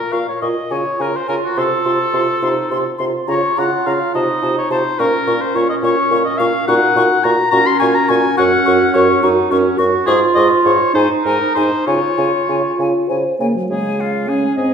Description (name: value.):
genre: quick classical-period movement for wind quintet.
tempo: 70 BPM (dotted quarters).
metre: 6/8.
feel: rubato.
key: Bb minor, Db major from 6.7 s.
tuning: A4 = 440 Hz.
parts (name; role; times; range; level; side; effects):
clear oboe; second line; 0.0-14.7 s; F4 to C6; -18 LUFS; left 4 dB; none.
bright silver concert flute; melody; 0.1-14.7 s; F5 to Db6; -25 LUFS; left 7 dB; none.
mellow French horn; accompaniment; 0.1-14.7 s; Gb3 to C5; -20 LUFS; equal; none.
mellow bassoon; bass; 0.1-14.7 s; Gb2 to Db3; -19 LUFS; right 2 dB; none.
warm clarinet; accompaniment; 0.7-14.7 s; Db4 to Eb5; -19 LUFS; right 5 dB; none.
room: wet recital hall reverb, RT60 1.4 s.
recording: recorded in a church or concert hall.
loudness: -13 LUFS.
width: side -7 dB against mid.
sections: 0.0-13.7 A section; 13.7-14.7 B section.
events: none.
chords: 0.0 Bbm; 0.7 Db; 1.6 F/C; 3.3 Bbm/Db (rootless); 4.2 F7(no3)/C; 5.0 Bbm; 6.7 Gb/Bb; 8.4 Gb5; 10.1 Db/Ab; 11.0 Ab5; 11.9 Db.